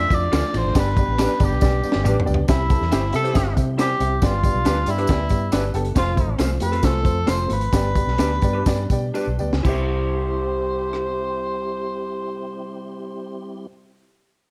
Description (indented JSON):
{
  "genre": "uptempo 1960s-style soul",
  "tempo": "117-139 BPM",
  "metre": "4/4",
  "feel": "straight",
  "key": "C major",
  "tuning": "A4 = 440 Hz",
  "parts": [
    { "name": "clear tenor saxophone", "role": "melody", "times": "0.0-13.7 s", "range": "E4 to E5", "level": "-28 LUFS", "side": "equal", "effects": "slapback echo" },
    { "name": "dark upright piano", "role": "accompaniment", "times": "0.0-13.7 s", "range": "C2 to E5", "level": "-30 LUFS", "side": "equal", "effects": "none" },
    { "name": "mellow tonewheel organ", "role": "sustained chords", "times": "0.0-13.7 s", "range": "F3 to G4", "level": "-36 LUFS", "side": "equal", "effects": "none" },
    { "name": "vintage muted fingered electric bass", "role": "bass", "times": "0.0-13.7 s", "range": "F1 to C3", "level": "-26 LUFS", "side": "equal", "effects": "none" },
    { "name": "crunchy breakbeat drum kit", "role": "drums", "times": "0.1-11.0 s", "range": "crash cymbal, hi-hat, kick drum, ride cymbal, rim click, snare drum, toms", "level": "-24 LUFS", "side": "equal", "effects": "none" },
    { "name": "tambourine", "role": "percussion", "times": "0.1-9.9 s", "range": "none", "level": "-42 LUFS", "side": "equal", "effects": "none" },
    { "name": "electric guitar through a small old amp", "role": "stabs", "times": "0.3-13.7 s", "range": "C4 to D5", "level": "-31 LUFS", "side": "equal", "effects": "spring reverb" }
  ],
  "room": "light reverb, small room ambience",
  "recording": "dark, warm production",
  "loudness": "-21 LUFS",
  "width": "mono",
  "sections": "0.0-2.5 A section; 2.5-9.6 B section; 9.6-13.7 C section",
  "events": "drum fill 1.6-2.5, 9.1-9.6; slowing down 6.0-9.6",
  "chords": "0.0 Dm; 0.8 G; 2.5 C; 4.2 G; 6.0 F; 7.7 G; 9.6 C"
}